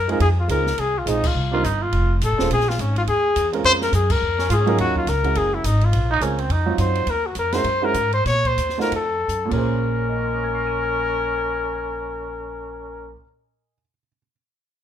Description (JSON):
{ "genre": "jazz, small-group swing and bop", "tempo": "147-211 BPM", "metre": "4/4", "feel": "swing 60% on 8ths", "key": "Bb minor", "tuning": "A4 = 440 Hz", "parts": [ { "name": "breathy trumpet", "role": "melody", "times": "0.0-13.2 s", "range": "Db4 to Db5", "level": "-22 LUFS", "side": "left 3 dB", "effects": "none" }, { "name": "upright bass", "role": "bass", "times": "0.0-13.1 s", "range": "Eb1 to Bb2", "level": "-23 LUFS", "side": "equal", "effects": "none" }, { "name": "warm upright piano", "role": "accompaniment", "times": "0.1-14.3 s", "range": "Bb2 to Eb7", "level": "-25 LUFS", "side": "right 6 dB", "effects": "none" }, { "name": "open jazz drum kit", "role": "drums", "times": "0.1-9.6 s", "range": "crash cymbal, hi-hat, kick drum, ride cymbal, snare drum", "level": "-30 LUFS", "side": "equal", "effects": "none" }, { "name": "growling trumpet", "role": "second line", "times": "1.5-2.2, 4.4-6.7, 9.5-13.2 s", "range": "C4 to F4", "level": "-27 LUFS", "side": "right 4 dB", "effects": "none" } ], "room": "light reverb", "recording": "minimal, uncompressed stereo recording", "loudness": "-18 LUFS", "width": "side -10 dB against mid", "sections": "0.0-4.8 A section; 4.8-9.7 B section; 9.7-12.9 C section", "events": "band accent 1.2, 4.1; slowing down 7.1-9.7; drum fill 9.3-9.7", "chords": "0.2 Fm7; 1.4 Cm7; 1.9 F7; 2.5 Bbm7; 4.8 Ebm7; 5.4 Gb7; 5.9 Bbm9; 6.5 F5; 7.1 Ebm7; 7.6 Gb7; 8.3 Bbsus2; 8.9 F; 9.5 Bbm9" }